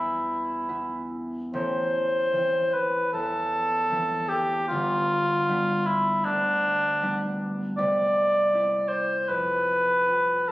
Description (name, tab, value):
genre	classical, romantic duo for cor anglais and harp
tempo	70-81 BPM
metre	4/4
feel	rubato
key	A minor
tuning	A4 = 442 Hz
part	mellow cor anglais	melody	0.0-10.5 s	D4 to D5	-23 LUFS	equal	none
part	concert harp	accompaniment	0.0-10.5 s	G1 to F4	-32 LUFS	equal	none
room	moderate scoring stage reverb, RT60 1.9 s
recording	recorded on a phone in the room, studio reverb, compression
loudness	-22 LUFS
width	side -17 dB against mid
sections	0.0-10.5 A section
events	none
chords	0.0 E5; 1.5 Am; 4.7 G; 7.8 C; 9.3 F5